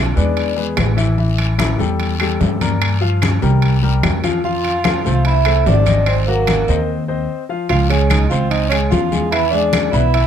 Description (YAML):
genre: Afro-Cuban jazz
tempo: 148 BPM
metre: 4/4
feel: straight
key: unclear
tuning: A4 = 440 Hz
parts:
  - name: warm concert grand piano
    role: accompaniment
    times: 0.0-10.3 s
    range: E3 to E6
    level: -21 LUFS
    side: left 4 dB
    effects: none
  - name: upright bass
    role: bass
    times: 0.0-10.3 s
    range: Ab1 to G2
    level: -17 LUFS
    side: equal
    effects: none
  - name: vibraphone with medium mallets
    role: melody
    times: 0.2-0.5, 4.5-10.3 s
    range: Bb4 to F5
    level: -20 LUFS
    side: right 1 dB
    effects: none
  - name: breathy tenor saxophone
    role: second line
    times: 0.2-0.5, 4.4-10.3 s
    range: Bb3 to F4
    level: -23 LUFS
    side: right 6 dB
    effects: none
  - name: congas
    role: percussion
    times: 0.2-10.3 s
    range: none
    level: -23 LUFS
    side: left 2 dB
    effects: none
  - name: guiro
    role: percussion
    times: 0.2-10.3 s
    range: none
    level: -31 LUFS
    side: left 8 dB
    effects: none
  - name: timbales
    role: percussion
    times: 0.4-10.3 s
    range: none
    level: -25 LUFS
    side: right 5 dB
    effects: none
  - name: claves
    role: percussion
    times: 0.8-9.9 s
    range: none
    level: -26 LUFS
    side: left 9 dB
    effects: none
room: little or no reverb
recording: close, detailed microphones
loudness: -14 LUFS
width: side -9 dB against mid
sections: 0.0-7.7 A section; 7.7-10.3 B section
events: break 6.9-7.7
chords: 0.4 E; 1.2 A5; 2.8 Gm7; 3.6 C5; 4.4 Fmaj7; 6.1 Ab13; 7.7 Dbmaj7; 9.3 E7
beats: 0.37 0.78 | 1.19 1.59 2.00 2.41 | 2.82 3.22 3.63 4.04 | 4.44 4.85 5.26 5.67 | 6.07 6.48 6.89 7.29 | 7.70 8.11 8.51 8.92 | 9.32 9.73 10.14